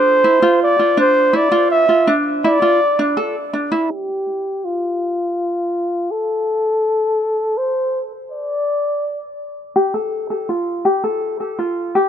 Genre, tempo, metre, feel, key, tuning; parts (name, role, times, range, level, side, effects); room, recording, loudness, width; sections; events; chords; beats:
folktronica; 82 BPM; 4/4; straight; F major; A4 = 436 Hz
mellow flugelhorn; melody; 0.0-9.4 s; F4 to E5; -16 LUFS; equal; tape echo
ukulele; arpeggios; 0.0-3.9, 9.8-12.1 s; D4 to A4; -17 LUFS; right 1 dB; tape echo
light reverb; low-pass filter; -15 LUFS; side -9 dB against mid
0.0-3.9 A section; 3.9-12.1 B section
filter sweep 3.9-12.1
0.0 Dmadd9; 3.9 Fadd9
0.25 | 0.98 1.71 2.44 3.18 | 3.91 4.64 5.37 6.10 | 6.83 7.57 8.30 9.03 | 9.76 10.49 11.22 11.96